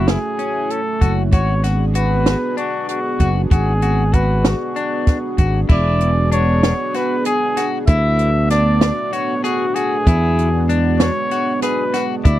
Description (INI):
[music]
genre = progressive instrumental, band music in an uneven meter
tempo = 192 BPM (eighths)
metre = 7/8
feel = straight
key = unclear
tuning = A4 = 443 Hz
[part]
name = mellow trumpet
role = melody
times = 0.0-12.4 s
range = F#4 to E5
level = -21 LUFS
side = equal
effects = none
[part]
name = chorused pulse-width pad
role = accompaniment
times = 0.0-12.4 s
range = G#3 to G#4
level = -24 LUFS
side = right 2 dB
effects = none
[part]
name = clean electric guitar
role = arpeggios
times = 0.0-12.4 s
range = C#4 to G#4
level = -24 LUFS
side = left 7 dB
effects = none
[part]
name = fingered electric bass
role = bass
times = 0.0-12.4 s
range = E1 to E2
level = -16 LUFS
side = equal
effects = none
[part]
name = compact cocktail drum kit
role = drums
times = 0.1-12.4 s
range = crash cymbal, hi-hat, kick drum, snare drum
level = -16 LUFS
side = right 1 dB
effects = none
[sound]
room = little or no reverb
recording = dry, close 1970s-style studio recording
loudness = -15 LUFS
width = side -14 dB against mid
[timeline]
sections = 0.0-5.7 A section; 5.7-12.4 B section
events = none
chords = 0.0 F#m9; 1.3 G#m7b5; 5.7 E7; 7.9 Bm7/D; 10.1 E7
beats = 0.08 0.39 0.70 1.02 | 1.33 1.64 1.95 2.27 2.58 2.89 3.20 | 3.52 3.83 4.14 4.45 4.76 5.08 5.39 | 5.70 6.01 6.33 6.64 6.95 7.26 7.58 | 7.89 8.20 8.51 8.82 9.14 9.45 9.76 | 10.07 10.38 10.70 11.01 11.32 11.63 11.95 | 12.26